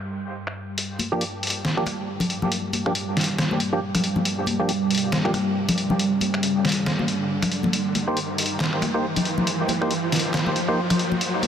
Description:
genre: deep dubstep.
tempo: 138 BPM.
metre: 4/4.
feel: swing 58% on 16ths, half-time.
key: G minor.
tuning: A4 = 440 Hz.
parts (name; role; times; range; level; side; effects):
dark analog pad; sustained chords; 0.0-11.5 s; G3; -27 LUFS; right 1 dB; chorus, phaser.
trip hop sampler-style drum kit; drums; 0.5-11.5 s; finger snaps, handclaps, hi-hat, snare drum; -26 LUFS; left 1 dB; low-pass filter on snare, studio reverb, low-pass filter on hats.
riser; sound effects; 2.6-11.5 s; none; -30 LUFS; right 1 dB; none.
congas; percussion; 1.0-11.5 s; none; -27 LUFS; left 2 dB; none.
percussive organ stab; stabs; 1.1-5.3, 8.1-10.8 s; F3 to C5; -28 LUFS; right 1 dB; ensemble chorus, dub echo.
room: moderate huge ambient reverb, RT60 4.8 s.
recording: dense, heavily limited modern master.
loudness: -21 LUFS.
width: side -8 dB against mid.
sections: 0.8-11.5 A section.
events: build-up 0.8-11.5; filter sweep on synth stab 0.8-11.5; riser 2.6-11.5.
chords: 0.0 N.C.; 0.8 Gm7; 7.7 Cm7.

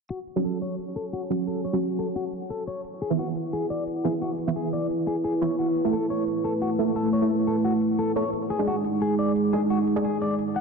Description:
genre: dark technical drum and bass.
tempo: 175 BPM.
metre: 4/4.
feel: straight.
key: F# minor.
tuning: A4 = 441 Hz.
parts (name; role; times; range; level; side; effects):
dark analog pad; sustained chords; 0.8-10.6 s; G#3 to G#5; -26 LUFS; right 1 dB; chorus.
electric guitar at the edge of break-up; arpeggios; 0.1-10.6 s; F#4 to F#5; -31 LUFS; left 4 dB; low-pass filter, ping-pong delay.
electronic hi-hat; drums; 0.1-10.6 s; none; -62 LUFS; right 2 dB; none.
orchestra-hit-like synth stab; stabs; 0.4-10.1 s; E3 to A4; -28 LUFS; right 3 dB; built-in reverb, ping-pong delay.
room: wet lush hall reverb, RT60 2.0 s, digital ambience.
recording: dense, heavily limited modern master, low-pass filter.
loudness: -23 LUFS.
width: side -5 dB against mid.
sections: 0.1-10.6 A section.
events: filter sweep on clean electric guitar 0.1-10.6; filter sweep on synth stab 0.1-10.6; filter sweep 0.1-10.6.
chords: 0.1 F#m; 2.8 Eadd9; 5.6 Aadd9; 8.3 G#5.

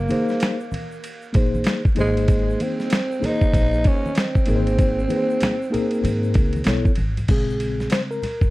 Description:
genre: hip hop, jazz-hop.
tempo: 96 BPM.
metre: 4/4.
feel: swing 62% on 16ths.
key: Bb minor.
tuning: A4 = 439 Hz.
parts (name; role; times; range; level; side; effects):
growling tenor saxophone; melody; 0.0-6.7 s; Ab3 to Eb4; -26 LUFS; right 2 dB; tape echo.
upright bass; bass; 0.0-8.5 s; Ab1 to Ab2; -24 LUFS; equal; none.
mellow tine electric piano; accompaniment; 0.1-8.5 s; Db3 to C#5; -24 LUFS; left 2 dB; medium stereo tremolo.
dusty soul sampler-style drum kit; drums; 0.1-8.5 s; crash cymbal, hi-hat, kick drum, ride cymbal, snare drum; -21 LUFS; equal; none.
congas and tube shaker; percussion; 0.1-8.5 s; none; -33 LUFS; equal; none.
room: light reverb.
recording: dark, warm production, vinyl crackle.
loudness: -18 LUFS.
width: side -19 dB against mid.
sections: 0.0-7.3 A section; 7.3-8.5 B section.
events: tine electric piano solo 7.3-8.5.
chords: 0.0 Gb69 (rootless); 2.0 Abadd9; 4.5 Db5/Ab; 6.7 Bsus2; 7.3 Bbm9.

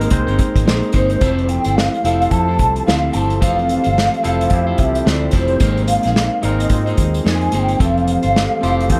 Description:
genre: indie pop, bedroom pop.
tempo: 109 BPM.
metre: 4/4.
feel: swing 60% on 16ths.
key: F major.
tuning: A4 = 440 Hz.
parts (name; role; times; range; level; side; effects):
breathy mellow shakuhachi; melody; 0.0-9.0 s; Ab4 to Bb5; -22 LUFS; equal; ensemble chorus, slapback echo.
barky tine electric piano; accompaniment; 0.0-9.0 s; E3 to C6; -26 LUFS; equal; overdrive, cassette tape.
clean electric guitar; accompaniment; 0.0-9.0 s; F3 to C5; -25 LUFS; equal; subtle chorus, warbly pitch drift, plate reverb.
warbly tape-like pad; sustained chords; 0.2-9.0 s; Ab3 to A4; -30 LUFS; equal; none.
vintage muted fingered electric bass; bass; 0.0-9.0 s; F1 to Ab2; -22 LUFS; equal; none.
unplugged drum kit; drums; 0.0-9.0 s; hi-hat, kick drum, snare drum; -21 LUFS; equal; none.
room: moderate studio reverb, RT60 0.6 s.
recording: dark, warm production.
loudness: -16 LUFS.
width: mono.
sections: 0.0-9.0 A section.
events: tine electric piano fill 8.4-9.0.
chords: 0.0 Abadd9; 1.2 Fmaj7; 5.6 Abadd9; 7.8 Fmaj7.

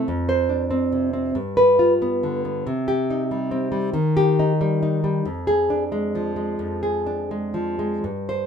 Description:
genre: romantic piece for solo classical guitar.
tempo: 81-95 BPM.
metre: 4/4.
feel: rubato.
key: unclear.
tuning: A4 = 440 Hz.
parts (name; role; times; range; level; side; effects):
nylon-string guitar; solo; 0.0-8.5 s; F2 to C5; -20 LUFS; equal; none.
room: moderate studio reverb, RT60 0.6 s.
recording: minimal, uncompressed stereo recording.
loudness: -19 LUFS.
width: side -7 dB against mid.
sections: 0.0-8.5 A section.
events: none.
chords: 0.1 Dm7/F; 1.4 G7; 2.7 Cm; 4.0 Eb; 5.3 Ddim/F.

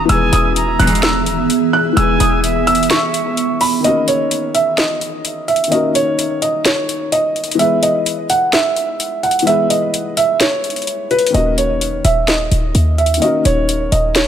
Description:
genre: hip hop, trap.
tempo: 128 BPM.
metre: 4/4.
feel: half-time.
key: Eb phrygian.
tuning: A4 = 440 Hz.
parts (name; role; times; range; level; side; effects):
felt-muted upright piano; melody; 0.0-14.3 s; B4 to Gb6; -16 LUFS; right 2 dB; tape echo.
silver concert flute; second line; 0.0-3.8 s; E5 to Bb5; -22 LUFS; right 5 dB; tape echo.
dark baby grand piano; accompaniment; 0.0-14.3 s; Eb3 to B4; -22 LUFS; left 6 dB; none.
ethereal airy pad; sustained chords; 0.0-3.8 s; E3 to E5; -20 LUFS; right 3 dB; ensemble chorus, built-in reverb.
short 808-style bass; bass; 0.0-2.9, 11.3-14.3 s; Eb1 to Eb2; -17 LUFS; equal; none.
trap drum kit; drums; 0.1-14.3 s; hi-hat, snare drum; -19 LUFS; left 1 dB; overdrive.
bright symphonic string section; stabs; 0.8-1.2 s; G#2 to E3; -22 LUFS; left 2 dB; none.
room: light reverb, studio ambience.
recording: none.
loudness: -13 LUFS.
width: side -9 dB against mid.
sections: 0.0-3.8 A section; 3.8-14.3 B section.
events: break 2.9-3.8; kick muted 3.8-11.3.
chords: 0.1 E; 3.8 Ebm7; 7.6 E; 11.3 Ebm7.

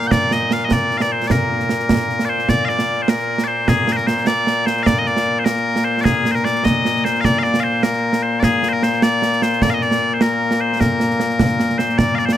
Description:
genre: scottish traditional, Scottish pipe music.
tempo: 101 BPM (dotted quarters).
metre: 6/8.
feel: straight.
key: Bb mixolydian.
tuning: A4 = 440 Hz.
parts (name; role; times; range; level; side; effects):
loud bright bagpipes; melody; 0.0-12.4 s; Bb2 to G5; -17 LUFS; left 2 dB; none.
concert snare drum and concert bass drum; drums; 0.0-12.4 s; none; -19 LUFS; right 2 dB; none.
room: light reverb.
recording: none.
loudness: -15 LUFS.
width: side -11 dB against mid.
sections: 0.0-2.5 A section; 2.5-12.0 B section.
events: none.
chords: none.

